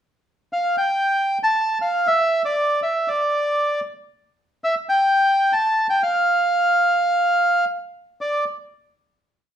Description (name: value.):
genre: tango.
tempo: 117 BPM.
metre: 4/4.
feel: rubato.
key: D minor.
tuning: A4 = 440 Hz.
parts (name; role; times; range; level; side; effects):
bandoneon; solo; 0.5-8.4 s; D5 to A5; -17 LUFS; equal; slapback echo.
room: wet club reverb, RT60 0.8 s.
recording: heard from further back in the room.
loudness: -18 LUFS.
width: side -9 dB against mid.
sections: 0.0-8.2 A section; 8.2-9.6 final note.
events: none.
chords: none.